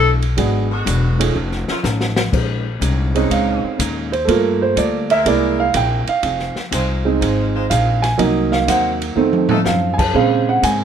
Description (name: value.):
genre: jazz, big band swing.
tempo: 123 BPM.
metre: 4/4.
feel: swing 68% on 8ths.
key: Bb minor.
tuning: A4 = 440 Hz.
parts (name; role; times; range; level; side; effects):
hollow-body jazz guitar; accompaniment; 0.0-10.8 s; G#2 to C5; -27 LUFS; left 4 dB; none.
upright bass; bass; 0.0-10.8 s; E1 to Bb2; -20 LUFS; left 1 dB; none.
open jazz drum kit; drums; 0.2-10.8 s; crash cymbal, hi-hat, kick drum, ride cymbal, snare drum, toms; -23 LUFS; equal; none.
warm grand piano; accompaniment; 0.4-10.8 s; Db3 to A5; -17 LUFS; right 5 dB; none.
clear saxophone section; sustained chords; 0.7-9.6 s; Db3 to C5; -27 LUFS; equal; none.
room: light reverb.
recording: minimal, uncompressed stereo recording.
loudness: -15 LUFS.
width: side -8 dB against mid.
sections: 0.0-2.3 A section; 2.3-10.8 A section.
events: drum fill 1.8-2.3, 9.2-9.7; grand piano solo 2.3-10.8.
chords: 0.4 G#m7b5; 1.4 Faug7; 2.3 Bbm11; 4.3 Gm9; 5.3 C7b13; 6.2 Fm7; 8.2 Cm7b5; 9.2 F7; 10.1 Bbm9.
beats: | 0.38 0.86 1.35 1.84 | 2.33 2.82 3.31 3.79 | 4.28 4.77 5.26 5.75 | 6.24 6.73 7.21 7.70 | 8.19 8.68 9.17 9.66 | 10.14 10.63.